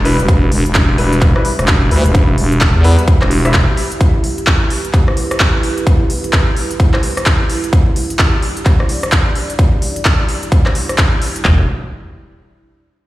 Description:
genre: bass house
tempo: 129 BPM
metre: 4/4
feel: swing 61% on 16ths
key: E minor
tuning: A4 = 440 Hz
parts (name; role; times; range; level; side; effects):
- dark analog pad; sustained chords; 0.0-11.7 s; E4 to E5; -24 LUFS; right 2 dB; chorus, vintage 12-bit sampler grit, sidechain pumping
- growling FM bass; bass; 0.0-3.7, 11.4-11.7 s; E1 to E2; -13 LUFS; equal; sidechain pumping
- clear grand piano; stabs; 0.1-3.6 s; G3 to E5; -22 LUFS; left 2 dB; sidechain pumping, tape echo
- big-room dance drum kit; drums; 0.1-11.4 s; handclaps, hi-hat, rim click; -18 LUFS; equal; none
- big-room dance drum kit; drums; 0.3-11.6 s; handclaps, kick drum, toms; -12 LUFS; equal; none
room: light reverb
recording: played on a big sound system in a bare room, large studio reverb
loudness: -11 LUFS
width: side -17 dB against mid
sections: 0.0-11.4 A section; 11.4-13.1 B section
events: none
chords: 0.0 Em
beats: | 0.29 0.75 1.22 1.68 | 2.15 2.61 3.08 3.54 | 4.01 4.47 4.94 5.40 | 5.87 6.33 6.80 7.26 | 7.73 8.19 8.66 9.12 | 9.59 10.05 10.52 10.98 | 11.45

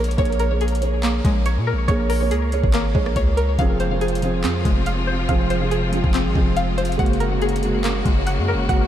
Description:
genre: hip hop, trap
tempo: 141 BPM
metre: 4/4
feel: half-time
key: Bb minor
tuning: A4 = 441 Hz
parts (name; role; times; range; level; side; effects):
- felt-muted upright piano; accompaniment; 0.0-8.9 s; F3 to Db5; -24 LUFS; right 3 dB; analog chorus, low-pass filter
- string-like resonator pluck; arpeggios; 0.0-8.9 s; Ab3 to Gb5; -25 LUFS; left 2 dB; chorus, phaser, low-pass filter, ping-pong delay
- hard-hitting 808-style bass; bass; 0.0-8.9 s; F1 to Bb2; -22 LUFS; equal; none
- trap drum kit; drums; 0.0-8.8 s; handclaps, hi-hat, kick drum, rim click; -23 LUFS; equal; none
- clear symphonic string section; sustained chords; 3.6-8.9 s; C3 to Gb4; -27 LUFS; left 3 dB; none
room: light reverb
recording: vinyl crackle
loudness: -18 LUFS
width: side -11 dB against mid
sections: 0.0-8.9 A section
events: none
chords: 0.0 Bbm7; 3.6 Fm; 7.0 Gbadd9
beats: | 0.18 0.61 1.03 1.46 | 1.88 2.31 2.74 3.16 | 3.59 4.01 4.44 4.86 | 5.29 5.71 6.14 6.57 | 6.99 7.42 7.84 8.27 | 8.69

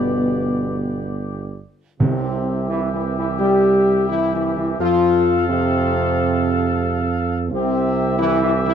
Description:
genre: classical, ceremonial fanfare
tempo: 87 BPM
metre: 4/4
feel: straight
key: C major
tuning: A4 = 440 Hz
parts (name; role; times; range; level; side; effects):
- mellow trumpet section; melody; 0.0-8.7 s; G4 to F5; -26 LUFS; left 2 dB; none
- clear trombone section; sustained chords; 0.0-8.7 s; B2 to G3; -24 LUFS; right 4 dB; none
- mellow French horn section; sustained chords; 0.0-8.7 s; B3 to G4; -20 LUFS; left 4 dB; none
- warm tuba; bass; 0.0-8.7 s; G1 to F2; -22 LUFS; right 5 dB; none
- timpani; percussion; 0.0-3.0 s; G2 to C3; -24 LUFS; right 2 dB; none
room: light reverb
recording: dark, warm production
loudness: -17 LUFS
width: side -8 dB against mid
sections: 0.0-8.7 A section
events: none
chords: 0.0 G; 2.0 C; 4.8 F; 7.5 C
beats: 0.56 1.28 | 2.00 2.69 3.39 4.08 | 4.78 5.47 6.14 6.81 | 7.50 8.18

